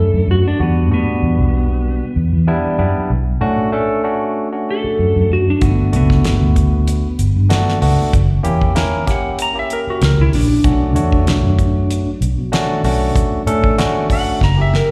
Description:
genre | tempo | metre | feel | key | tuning
straight-eighth soul blues | 96 BPM | 4/4 | swing 53% on 16ths | B minor | A4 = 441 Hz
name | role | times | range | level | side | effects
clean lap steel guitar | melody | 0.0-14.9 s | B3 to A#5 | -22 LUFS | equal | plate reverb, slapback echo
barky tine electric piano | accompaniment | 0.0-14.9 s | G3 to C#5 | -22 LUFS | equal | plate reverb, slapback echo
vintage muted fingered electric bass | bass | 0.0-14.8 s | F#1 to E3 | -18 LUFS | equal | none
damped 70s drum kit | drums | 5.6-14.9 s | hi-hat, kick drum, snare drum | -21 LUFS | equal | slapback echo
room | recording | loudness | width
light reverb | live gig heard through the venue's PA, recital hall reverb | -16 LUFS | mono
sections
0.0-14.9 A section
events
drum fill 14.4-14.9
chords
0.0 Bm7 (rootless); 0.6 Em7; 3.1 Bm7 (rootless); 5.6 Gmaj7; 8.1 F#7b9 (rootless); 10.6 Bm7; 14.4 F#7b9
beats
| 0.60 1.22 1.85 2.48 | 3.11 3.73 4.36 4.99 | 5.62 6.25 6.87 7.50 | 8.13 8.76 9.39 10.01 | 10.64 11.27 11.90 12.53 | 13.15 13.78 14.41

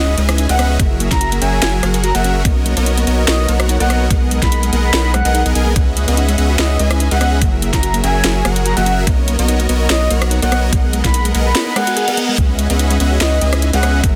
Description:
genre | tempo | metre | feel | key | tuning
future bass | 145 BPM | 4/4 | swing 54% on 16ths, half-time | unclear | A4 = 440 Hz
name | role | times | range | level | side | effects
breathy flute-like synth lead | melody | 0.0-13.9 s | D#5 to B5 | -24 LUFS | equal | analog chorus, cassette tape, sidechain pumping, tape echo
thumb-piano-like synth pluck | arpeggios | 0.0-14.1 s | G#3 to E5 | -26 LUFS | equal | chorus, sidechain pumping, tape echo
big bright polysynth | riff | 0.0-14.2 s | F#3 to G#5 | -22 LUFS | equal | chorus, sidechain pumping
saturated sub bass | bass | 0.0-14.2 s | F#1 to C#2 | -19 LUFS | equal | sidechain pumping
impact and reverse cymbal | sound effects | 0.0-0.8, 11.7-12.4 s | none | -28 LUFS | equal | none
trap drum kit | drums | 0.2-14.1 s | hi-hat, rim click, snare drum | -21 LUFS | equal | overdrive
electronic kick drum | drums | 0.8-14.1 s | none | -18 LUFS | equal | none
room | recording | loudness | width
light reverb | dense, heavily limited modern master | -15 LUFS | mono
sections
0.0-14.2 A section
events
impact 0.0-0.8; reverse cymbal 11.7-12.4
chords
0.0 C#m11; 0.8 F#7; 2.5 Bmaj9; 4.1 G#m9/B; 5.8 C#m11; 7.4 F#7; 9.1 Bmaj9; 10.7 G#m9/B; 12.4 C#m11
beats
0.38 | 0.80 1.21 1.62 2.04 | 2.45 2.86 3.28 3.69 | 4.11 4.52 4.93 5.35 | 5.76 6.17 6.59 7.00 | 7.42 7.83 8.24 8.66 | 9.07 9.48 9.90 10.31 | 10.73 11.14 11.55 11.97 | 12.38 12.79 13.21 13.62 | 14.04

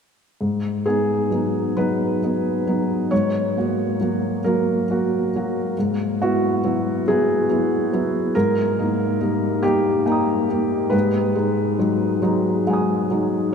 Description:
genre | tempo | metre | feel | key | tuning
neoclassical minimalist piano | 46 BPM (dotted quarters) | 6/8 | rubato | G# minor | A4 = 440 Hz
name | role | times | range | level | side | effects
felt-muted upright piano | solo | 0.4-13.5 s | G#2 to D#6 | -18 LUFS | equal | none
room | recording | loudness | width
wet cathedral reverb, RT60 6.6 s | in a vast, echoing space | -18 LUFS | side -6 dB against mid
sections
0.4-13.5 A section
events
none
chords
0.4 G#m7; 3.1 F#/G#; 5.7 Eadd9/G#; 8.3 D#/G#; 10.9 G#m7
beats
| 0.41 1.77 | 3.11 4.43 | 5.75 7.04 | 8.34 9.63 | 10.93 12.23 | 13.54

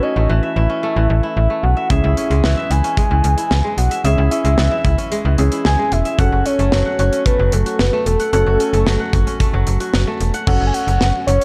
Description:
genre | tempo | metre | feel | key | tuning
synth-pop | 112 BPM | 4/4 | straight | unclear | A4 = 440 Hz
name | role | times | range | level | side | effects
soft octave-layered synth lead | melody | 0.0-11.4 s | A4 to G#5 | -22 LUFS | equal | chorus, tremolo
warm grand piano | accompaniment | 0.0-11.4 s | C#4 to A4 | -28 LUFS | equal | none
kora | arpeggios | 0.0-11.4 s | E3 to F#5 | -27 LUFS | equal | digital delay
slap-like FM bass | bass | 0.2-11.4 s | E1 to C#2 | -18 LUFS | equal | none
modern studio drum kit | drums | 1.9-11.4 s | crash cymbal, hi-hat, kick drum, snare drum | -23 LUFS | equal | none
room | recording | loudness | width
light reverb, studio reverb | dark, warm production | -16 LUFS | mono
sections
0.0-10.5 A section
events
none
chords
0.0 A; 1.9 C#m; 6.2 F#m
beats
0.29 0.83 1.37 | 1.90 2.44 2.97 3.51 | 4.04 4.58 5.12 5.65 | 6.19 6.72 7.26 7.79 | 8.33 8.87 9.40 9.94 | 10.47 11.01

